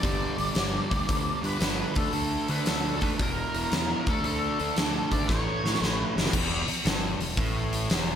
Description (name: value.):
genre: blues rock power trio and southern rock.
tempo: 114 BPM.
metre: 4/4.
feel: swing 67% on 8ths.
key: unclear.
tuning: A4 = 440 Hz.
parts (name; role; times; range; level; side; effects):
octave-fuzz lead guitar; melody; 0.0-6.1 s; A4 to D5; -32 LUFS; left 1 dB; wah, distortion, slapback echo.
fuzz guitar; riff; 0.0-8.2 s; E2 to D4; -30 LUFS; right 1 dB; distortion, slapback echo.
growling fingered electric bass; bass; 0.0-8.2 s; E1 to D3; -34 LUFS; equal; overdrive.
huge arena drum kit; drums; 0.0-8.1 s; crash cymbal, hi-hat, kick drum, snare drum; -28 LUFS; equal; none.
room: moderate lush hall reverb, RT60 1.8 s.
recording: big arena sound.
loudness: -24 LUFS.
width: side -9 dB against mid.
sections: 0.0-6.3 A section; 6.3-8.2 B section.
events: drum fill 5.3-6.3.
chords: 0.0 G; 1.9 D5; 3.2 E5; 4.0 D5; 5.3 A; 6.3 E5.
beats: | 0.03 0.56 1.08 1.61 | 2.14 2.67 3.19 3.72 | 4.24 4.77 5.29 5.82 | 6.34 6.86 7.38 7.90.